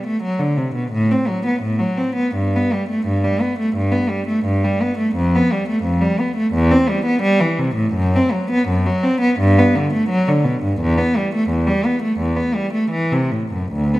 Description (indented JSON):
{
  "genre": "classical, baroque-style suite movement for unaccompanied cello",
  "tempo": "86 BPM",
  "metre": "4/4",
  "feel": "rubato",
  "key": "G major",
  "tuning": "A4 = 440 Hz",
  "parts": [
    { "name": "rich cello", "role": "solo", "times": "0.0-14.0 s", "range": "D2 to C4", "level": "-16 LUFS", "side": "equal", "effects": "none" }
  ],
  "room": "moderate recital hall reverb, RT60 1.9 s",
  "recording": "none",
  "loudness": "-16 LUFS",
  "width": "side -17 dB against mid",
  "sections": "0.0-14.0 A section",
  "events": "none",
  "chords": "none"
}